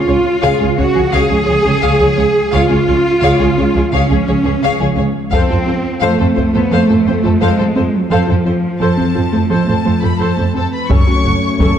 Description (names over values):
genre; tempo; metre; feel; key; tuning
cinematic, hybrid orchestral and electronic film score; 86 BPM; 4/4; straight; unclear; A4 = 441 Hz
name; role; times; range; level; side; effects
rich symphonic cello section; bass; 0.0-11.7 s; F#2 to G#4; -16 LUFS; right 1 dB; none
warm symphonic violin section; second line; 0.1-11.8 s; G#4 to B5; -22 LUFS; left 5 dB; none
warm symphonic viola section; accompaniment; 0.1-11.8 s; F#3 to C#5; -21 LUFS; left 1 dB; none
glassy wavetable pluck; arpeggios; 0.1-11.7 s; C#3 to F#4; -18 LUFS; equal; chorus, tape echo
rich symphonic double bass section; bass; 0.1-11.7 s; F#1 to F2; -17 LUFS; right 2 dB; none
taiko ensemble; drums; 0.8-1.1, 5.3-6.7, 10.9-11.8 s; none; -17 LUFS; left 1 dB; none
rich symphonic violin section; melody; 10.6-11.8 s; A5 to C#6; -20 LUFS; left 4 dB; none
dark French horn section; sustained chords; 10.9-11.8 s; A3 to C#4; -20 LUFS; left 3 dB; none
room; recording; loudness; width
wet concert hall reverb, RT60 2.3 s; dark, warm production; -11 LUFS; side -9 dB against mid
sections
0.0-10.9 A section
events
none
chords
0.0 C#; 5.3 F; 10.9 F#m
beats
0.44 1.14 1.84 | 2.53 3.23 3.93 4.63 | 5.33 6.02 6.72 7.42 | 8.12 8.81 9.51 10.21 | 10.91 11.60